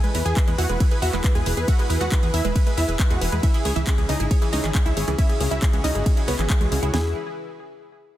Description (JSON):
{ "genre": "uplifting trance", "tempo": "137 BPM", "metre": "4/4", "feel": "straight", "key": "E major", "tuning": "A4 = 438 Hz", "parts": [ { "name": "wide unison pluck", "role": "melody", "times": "0.0-7.1 s", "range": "G#3 to G#5", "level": "-27 LUFS", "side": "equal", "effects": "sidechain pumping, tape echo" }, { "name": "supersaw pad", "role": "sustained chords", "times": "0.0-7.1 s", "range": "C#3 to B4", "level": "-32 LUFS", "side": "equal", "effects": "sidechain pumping" }, { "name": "wide unison pluck", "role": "arpeggios", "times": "0.0-7.1 s", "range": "C#3 to E5", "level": "-32 LUFS", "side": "right 4 dB", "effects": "phaser, sidechain pumping, tape echo" }, { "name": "house drum kit", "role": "drums", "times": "0.0-6.9 s", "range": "handclaps, hi-hat, ride cymbal", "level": "-30 LUFS", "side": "equal", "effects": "none" }, { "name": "plucky analog bass", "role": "bass", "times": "0.1-7.1 s", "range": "E1 to E2", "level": "-24 LUFS", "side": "equal", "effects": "sidechain pumping" }, { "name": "house drum kit", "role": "drums", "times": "0.4-7.0 s", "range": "kick drum, snare drum", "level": "-20 LUFS", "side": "equal", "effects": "none" } ], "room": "digital ambience", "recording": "dense, heavily limited modern master", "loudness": "-19 LUFS", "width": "side -13 dB against mid", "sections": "0.0-6.9 A section; 6.9-8.2 B section", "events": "drop 0.0-6.9", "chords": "0.0 E; 3.4 C#m; 6.9 E", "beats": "0.37 0.81 1.24 | 1.68 2.12 2.56 3.00 | 3.43 3.87 4.31 4.75 | 5.18 5.62 6.06 6.50 | 6.94" }